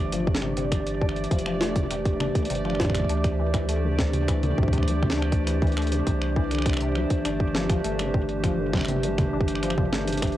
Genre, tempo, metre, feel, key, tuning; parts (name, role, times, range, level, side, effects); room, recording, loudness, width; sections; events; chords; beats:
IDM; 101 BPM; 4/4; straight; A4 = 440 Hz
warbly tape-like pad; sustained chords; 0.0-10.4 s; E3 to C5; -28 LUFS; right 1 dB; chorus, built-in reverb
warm sub bass; bass; 0.0-10.4 s; F1 to D2; -28 LUFS; equal; tube saturation
bubbling stepped-filter texture; texture; 0.0-10.4 s; D5; -36 LUFS; right 3 dB; chorus, built-in reverb, sidechain pumping
deep acid bass; arpeggios; 0.1-10.3 s; C3 to D4; -32 LUFS; left 5 dB; analog chorus, analog delay
jungle sampler-style drum kit; drums; 0.1-10.4 s; finger snaps, hi-hat, snare drum, toms; -30 LUFS; equal; cassette tape, analog delay
electronic kick drum; drums; 0.3-10.3 s; -25 LUFS; equal; cassette tape
light reverb; home recording on cassette; -22 LUFS; side -13 dB against mid
0.0-10.4 A section
0.0 G9sus4; 3.1 D9sus4; 7.5 G9sus4
0.12 | 0.72 1.31 1.91 2.50 | 3.10 3.69 4.28 4.88 | 5.47 6.07 6.66 7.25 | 7.85 8.44 9.04 9.63 | 10.22